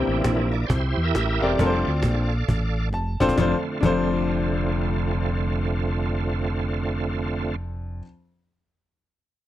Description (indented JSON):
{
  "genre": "uptempo gospel",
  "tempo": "134 BPM",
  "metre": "4/4",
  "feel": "swing 61% on 8ths",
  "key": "F major",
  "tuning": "A4 = 440 Hz",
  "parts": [
    { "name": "clear grand piano", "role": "accompaniment", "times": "0.0-8.0 s", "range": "F2 to A5", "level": "-26 LUFS", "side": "left 4 dB", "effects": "none" },
    { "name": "bright tonewheel organ", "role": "sustained chords", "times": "0.0-7.6 s", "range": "D3 to F5", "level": "-27 LUFS", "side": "right 4 dB", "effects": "fast rotary speaker, overdrive, chorus vibrato" },
    { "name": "fingered electric bass", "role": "bass", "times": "0.0-8.0 s", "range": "E1 to E2", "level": "-25 LUFS", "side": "equal", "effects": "none" },
    { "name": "cajon", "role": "drums", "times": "0.1-4.0 s", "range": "none", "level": "-26 LUFS", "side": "equal", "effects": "none" }
  ],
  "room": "studio reverb",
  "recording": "dry, close 1970s-style studio recording",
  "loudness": "-21 LUFS",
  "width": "side -13 dB against mid",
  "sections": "0.0-3.4 A section; 3.4-7.0 B section",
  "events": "tonewheel organ solo 0.0-3.4; grand piano fill 2.7-3.4; drum fill 2.9-3.4",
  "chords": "0.0 C7; 3.4 F6"
}